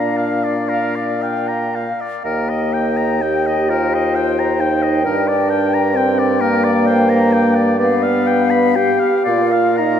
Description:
classical, slow romantic movement for wind quintet; 38-46 BPM (dotted quarters); 6/8; rubato; Eb major; A4 = 440 Hz
mellow hollow silver concert flute; melody; 0.0-10.0 s; F5 to G5; -22 LUFS; left 6 dB
clear oboe; second line; 0.0-10.0 s; Bb4 to B5; -22 LUFS; left 2 dB
mellow clarinet; accompaniment; 0.0-10.0 s; Bb4 to G5; -24 LUFS; right 6 dB
warm French horn; accompaniment; 0.0-10.0 s; Bb3 to G4; -18 LUFS; equal
warm bassoon; bass; 0.0-10.0 s; Eb2 to Bb2; -21 LUFS; right 1 dB
wet concert hall reverb, RT60 2.5 s; -14 LUFS; side -8 dB against mid
0.0-10.0 A section
0.0 Bb; 2.3 Eb; 5.1 Gm; 7.8 G7; 9.3 Bb

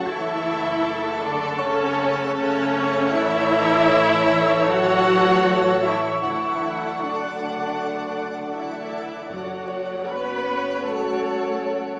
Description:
cinematic, suspense film score; 78 BPM; 4/4; straight; F# minor; A4 = 442 Hz
rich symphonic violin section; melody; 0.0-12.0 s; A4 to F#5; -29 LUFS; equal
clear symphonic violin section; second line; 0.0-12.0 s; C#5 to B5; -31 LUFS; equal
warm symphonic viola section; accompaniment; 0.0-12.0 s; C#4 to B4; -26 LUFS; equal
mellow French horn section; sustained chords; 0.0-12.0 s; A3 to A4; -34 LUFS; equal
twinkling granular texture; sustained chords; 0.0-12.0 s; F#4 to C#6; -35 LUFS; equal; built-in reverb
warm trombone section; sustained chords; 0.0-12.0 s; C#3 to C#4; -37 LUFS; equal
rich chamber double bass section; bass; 0.0-12.0 s; F#1 to D2; -42 LUFS; equal
warm studio cello section; bass; 0.0-12.0 s; C#3 to B3; -33 LUFS; equal
punchy sub bass; drone; 0.0-12.0 s; F#1; -54 LUFS; equal
warm symphonic violin section; texture; 0.0-12.0 s; C#5 to D7; -34 LUFS; equal
music box; texture; 0.1-3.9, 9.7-11.9 s; C#5 to G#6; -34 LUFS; equal
timpani; percussion; 9.3-10.4 s; F#2; -49 LUFS; equal
wet recital hall reverb, RT60 1.4 s; recorded in a church or concert hall, small speaker sound; -22 LUFS; mono
0.0-12.0 A section
0.0 F#m; 3.1 A; 6.2 D/F#; 9.3 F#m

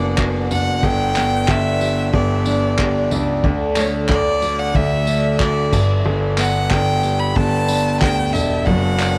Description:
acoustic pop; 92 BPM; 4/4; straight; A4 = 436 Hz
rich violin; melody; 0.0-9.2 s; C#5 to B5; -24 LUFS; equal; diffuse ambient delay
fingerpicked steel-string acoustic guitar; accompaniment; 0.0-9.2 s; G2 to G4; -23 LUFS; equal
clear concert grand piano; bass; 0.0-9.2 s; E1 to D2; -23 LUFS; equal
cloth-damped thuddy drum kit; drums; 0.2-9.1 s; crash cymbal, handclaps, kick drum, tambourine; -25 LUFS; equal
moderate huge ambient reverb, RT60 8.2 s; dreamy mix soaked in reverb; -18 LUFS; mono
0.0-9.2 A section
0.0 Bm/F#; 0.8 G; 3.4 D; 5.7 G; 8.7 Bm/F#

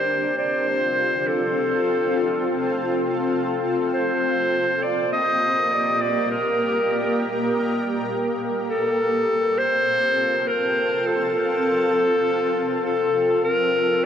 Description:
ambient; free time; A4 = 445 Hz
clear clarinet; melody; 0.0-14.1 s; A4 to Eb5; -21 LUFS; left 1 dB; dub echo
granular cloud pad; sustained chords; 0.0-14.1 s; Bb3 to A5; -24 LUFS; equal; built-in reverb
wet huge ambient reverb, RT60 8.0 s; -19 LUFS; side -8 dB against mid
0.0-13.4 A section
0.0 F; 3.9 Gm; 8.7 F; 13.4 Gm

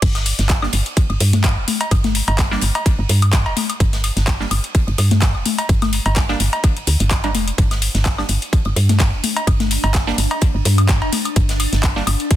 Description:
minimal techno; 127 BPM; 4/4; swing 55% on 16ths; G minor; A4 = 442 Hz
woody FM bass; bass; 0.0-12.2 s; F1 to G2; -18 LUFS; equal; sidechain pumping
big rock drum kit; drums; 0.0-12.4 s; ride cymbal, snare drum; -30 LUFS; right 3 dB; sidechain pumping on cymbals, high-pass filter on cymbals, small room ambience, high-pass filter on snare, high-pass filter on room
electronic kick drum; drums; 0.0-12.4 s; -16 LUFS; equal; small room ambience
garage drum kit; drums; 0.0-12.4 s; crash cymbal, handclaps, hi-hat; -23 LUFS; left 2 dB; small room ambience
electronic woodblock, toms and cowbell; percussion; 0.2-12.2 s; -23 LUFS; left 4 dB; small room ambience, ping-pong delay
wavetable chord stab; stabs; 0.6-12.0 s; G3 to D4; -27 LUFS; right 3 dB; ping-pong delay
swarming drone; texture; 8.4-12.4 s; D4; -28 LUFS; left 1 dB; built-in reverb, sidechain pumping
digital ambience; dense, heavily limited modern master; -15 LUFS; side -13 dB against mid
0.0-12.4 A section
drop 0.0-12.4
0.0 G5

